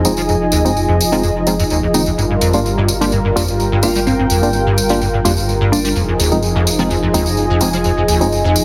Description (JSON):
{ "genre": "acid house", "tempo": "127 BPM", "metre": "4/4", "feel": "straight", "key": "unclear", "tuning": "A4 = 439 Hz", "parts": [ { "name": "warm analog pad", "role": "sustained chords", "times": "0.0-8.6 s", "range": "F3 to Bb4", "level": "-22 LUFS", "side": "equal", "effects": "chorus" }, { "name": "acid bass, square", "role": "riff", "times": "0.0-8.6 s", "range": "Eb2 to G3", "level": "-20 LUFS", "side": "equal", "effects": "ensemble chorus, digital delay" }, { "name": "warm sub bass", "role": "bass", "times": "0.0-8.6 s", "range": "F1 to G1", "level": "-26 LUFS", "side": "equal", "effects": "none" }, { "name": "tambourine", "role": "percussion", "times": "0.0-8.6 s", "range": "none", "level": "-24 LUFS", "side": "equal", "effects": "none" }, { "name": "warbly tape-like pad", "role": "texture", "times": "0.0-8.6 s", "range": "F4 to Ab5", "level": "-23 LUFS", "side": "equal", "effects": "chorus, built-in reverb" }, { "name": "percussive organ stab", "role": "stabs", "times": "0.1-8.3 s", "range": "F3 to F4", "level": "-22 LUFS", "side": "equal", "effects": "chorus, digital delay" }, { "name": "jazz brush drum kit", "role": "drums", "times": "0.1-8.6 s", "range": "none", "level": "barely audible", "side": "none", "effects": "none" }, { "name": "bell-like FM electric piano", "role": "melody", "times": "3.8-5.9 s", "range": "C4 to F4", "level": "-23 LUFS", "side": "equal", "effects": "chorus, cassette tape, tape echo" } ], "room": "light reverb, studio ambience", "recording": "heavily compressed radio sound, multiband compression", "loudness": "-15 LUFS", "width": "mono", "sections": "0.0-8.6 A section", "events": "filter sweep on acid bass 0.0-8.6", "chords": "0.0 Fm7; 2.2 Gm7; 6.0 Fm7" }